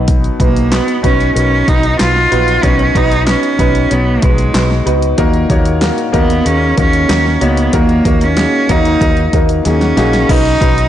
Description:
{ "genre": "piano-driven pop", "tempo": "94 BPM", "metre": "4/4", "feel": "straight", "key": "unclear", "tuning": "A4 = 445 Hz", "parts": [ { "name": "warm upright piano", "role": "accompaniment", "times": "0.0-10.9 s", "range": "Bb2 to B5", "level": "-16 LUFS", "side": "left 1 dB", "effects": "none" }, { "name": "vintage muted fingered electric bass", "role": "bass", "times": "0.0-10.9 s", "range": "Bb1 to Eb2", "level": "-15 LUFS", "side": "equal", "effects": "none" }, { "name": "deep house drum kit", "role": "drums", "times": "0.1-10.9 s", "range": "crash cymbal, handclaps, hi-hat, kick drum, snare drum", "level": "-15 LUFS", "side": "equal", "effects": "overdrive" }, { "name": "clear cello", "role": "melody", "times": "0.4-10.9 s", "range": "Ab3 to F4", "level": "-14 LUFS", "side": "right 2 dB", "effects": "none" } ], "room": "light reverb", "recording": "blown-out, overdriven recording, overdrive, nothing above 10.5 kHz", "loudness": "-10 LUFS", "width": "side -11 dB against mid", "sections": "0.0-10.3 A section", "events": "upright piano fill 9.3-10.3; drum fill 9.7-10.3", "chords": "0.0 B; 5.2 Ebm; 10.3 Badd9" }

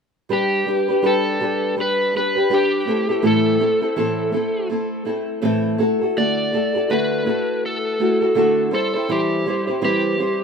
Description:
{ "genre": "pop", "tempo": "82 BPM", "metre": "4/4", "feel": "swing 60% on 16ths", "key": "G major", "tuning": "A4 = 440 Hz", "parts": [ { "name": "overdriven slide guitar", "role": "melody", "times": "0.3-10.4 s", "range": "G4 to D5", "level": "-22 LUFS", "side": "equal", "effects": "tape echo" }, { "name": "nylon-string guitar", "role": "accompaniment", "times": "0.3-10.4 s", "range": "A2 to C5", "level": "-19 LUFS", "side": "equal", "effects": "double-tracked left and right" } ], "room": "wet studio reverb, RT60 0.5 s", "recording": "rough home demo mix", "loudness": "-17 LUFS", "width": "side -6 dB against mid", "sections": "0.3-10.4 A section", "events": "none", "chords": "0.3 G; 2.9 Am; 5.8 Dadd9; 8.7 C/E" }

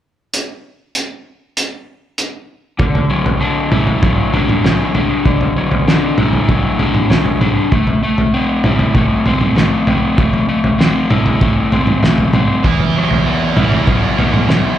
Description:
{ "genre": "indie rock", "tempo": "98 BPM", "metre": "4/4", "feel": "straight", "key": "unclear", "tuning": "A4 = 436 Hz", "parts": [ { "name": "cloth-damped thuddy drum kit", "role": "drums", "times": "0.3-14.6 s", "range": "hi-hat, kick drum, snare drum, toms", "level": "-14 LUFS", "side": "right 1 dB", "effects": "none" }, { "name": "crunchy overdriven guitar", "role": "riff", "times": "2.8-14.8 s", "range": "D3 to E4", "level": "-15 LUFS", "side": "left 2 dB", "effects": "slapback echo" }, { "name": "high-gain distorted guitar", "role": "riff", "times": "12.6-14.8 s", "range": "E3 to G#4", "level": "-19 LUFS", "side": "right 10 dB", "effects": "distortion, lush chorus, digital delay, slapback echo" } ], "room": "light reverb, small room ambience", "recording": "live gig heard through the venue's PA, club reverb", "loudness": "-12 LUFS", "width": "side -11 dB against mid", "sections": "0.3-2.8 A section; 2.8-14.8 B section", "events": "none", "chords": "0.3 N.C.; 2.8 Dadd9; 7.7 Am; 12.6 Eadd9" }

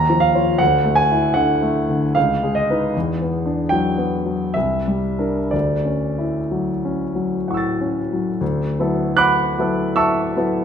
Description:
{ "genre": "classical, impressionist solo piano", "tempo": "58-81 BPM", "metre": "3/4", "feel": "rubato", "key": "D major", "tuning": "A4 = 439 Hz", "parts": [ { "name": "warm concert grand piano", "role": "solo", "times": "0.0-10.6 s", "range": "C2 to A6", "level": "-17 LUFS", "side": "equal", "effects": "none" } ], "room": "wet recital hall reverb, RT60 1.7 s", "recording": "minimal, uncompressed stereo recording", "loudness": "-17 LUFS", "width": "side -7 dB against mid", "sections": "0.0-8.4 A section; 8.4-10.6 A section", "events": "none", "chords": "0.0 Ebsus2; 0.6 Dadd9; 2.2 C#9; 2.9 Em9; 4.5 C9; 5.5 Dmaj9; 8.4 D69" }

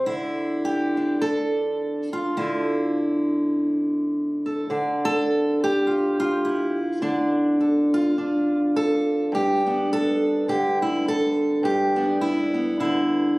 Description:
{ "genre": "folk, solo fingerstyle acoustic guitar", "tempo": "104 BPM", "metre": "4/4", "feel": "swing 56% on 8ths", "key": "unclear", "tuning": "A4 = 440 Hz", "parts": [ { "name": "fingerpicked steel-string acoustic guitar", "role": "solo", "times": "0.0-13.4 s", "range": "G2 to D5", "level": "-20 LUFS", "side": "equal", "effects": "none" } ], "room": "little or no reverb", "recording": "recorded on a phone in the room, studio reverb, compression", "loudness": "-20 LUFS", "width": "side -23 dB against mid", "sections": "0.0-4.7 A section; 4.7-13.4 B section", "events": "none", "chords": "0.1 Dmadd9; 9.3 G6" }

